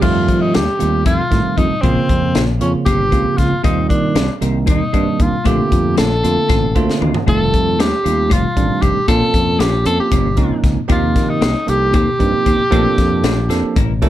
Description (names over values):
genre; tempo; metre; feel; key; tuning
electric jazz fusion; 232 BPM (eighths); 7/8; straight; unclear; A4 = 440 Hz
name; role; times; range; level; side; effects
clear tenor saxophone; melody; 0.0-14.0 s; C4 to A4; -18 LUFS; equal; none
bell-like tine electric piano; accompaniment; 0.0-14.1 s; Db3 to C#5; -19 LUFS; right 5 dB; none
semi-hollow electric guitar; stabs; 0.0-14.1 s; G3 to C5; -24 LUFS; left 6 dB; wide subtle chorus
modern bright fingered electric bass; bass; 0.0-14.1 s; F1 to F3; -19 LUFS; left 1 dB; none
crisp fusion drum kit; drums; 0.0-14.1 s; crash cymbal, hi-hat, kick drum, snare drum, toms; -18 LUFS; left 1 dB; none
room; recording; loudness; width
light reverb; dark, warm production; -13 LUFS; side -13 dB against mid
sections
0.0-14.1 A section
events
tine electric piano fill 6.5-7.3, 13.8-14.1; drum fill 6.9-7.3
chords
0.0 F9; 1.8 Bbmadd9; 3.6 Eb6; 5.5 Bbmaj9; 7.3 F9; 9.1 Bbmadd9; 10.9 Eb6; 12.7 Bbmaj9